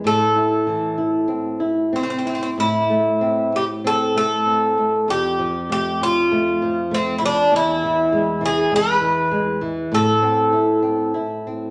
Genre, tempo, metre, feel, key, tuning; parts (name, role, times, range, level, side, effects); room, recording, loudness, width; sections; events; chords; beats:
fado-style ballad; 92-102 BPM; 4/4; rubato; A minor; A4 = 436 Hz
flamenco guitar; accompaniment; 0.0-11.7 s; E2 to E4; -25 LUFS; equal
Irish bouzouki; melody; 0.1-11.7 s; C4 to B4; -21 LUFS; equal
wet large studio reverb, RT60 1.1 s; -19 LUFS; mono
0.0-2.6 A section; 2.6-11.7 A section
0.0 Am; 5.1 Fadd9; 7.5 E; 9.9 Am
| 0.04 0.66 1.28 1.93 | 2.58 3.21 3.83 4.46 | 5.08 5.70 6.31 6.91 | 7.52 8.12 8.71 9.30 | 9.90 10.51 11.14